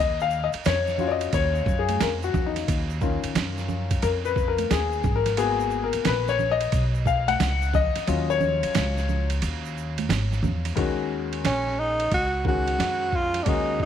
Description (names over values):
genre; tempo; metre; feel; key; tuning
hip hop, jazz-hop; 89 BPM; 4/4; swing 64% on 16ths; Eb minor; A4 = 439 Hz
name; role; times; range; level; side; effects
warm grand piano; accompaniment; 0.0-13.9 s; Eb3 to Gb5; -26 LUFS; left 8 dB; none
upright bass; bass; 0.0-13.9 s; Ab1 to Gb2; -27 LUFS; equal; none
tube shaker and congas; percussion; 0.2-10.8 s; none; -35 LUFS; right 7 dB; none
boom bap sampler-style drum kit; drums; 0.5-13.9 s; hi-hat, kick drum, ride cymbal, snare drum; -28 LUFS; right 3 dB; none
breathy tenor saxophone; melody; 11.5-13.9 s; Db4 to Gb4; -24 LUFS; right 2 dB; slapback echo
room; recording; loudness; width
light reverb, studio reverb; 1960s-style stereo with parts hard left and right, vinyl crackle; -22 LUFS; side -9 dB against mid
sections
0.0-10.8 A section; 10.8-13.9 B section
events
grand piano solo 0.0-10.8; kick muted 8.1-10.8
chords
0.0 Ebm7; 5.0 Abm9; 8.1 Ebm7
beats
0.66 1.33 2.01 | 2.68 3.35 4.03 4.70 | 5.38 6.05 6.72 7.40 | 8.07 8.75 9.42 10.10 | 10.77 11.44 12.12 12.79 | 13.47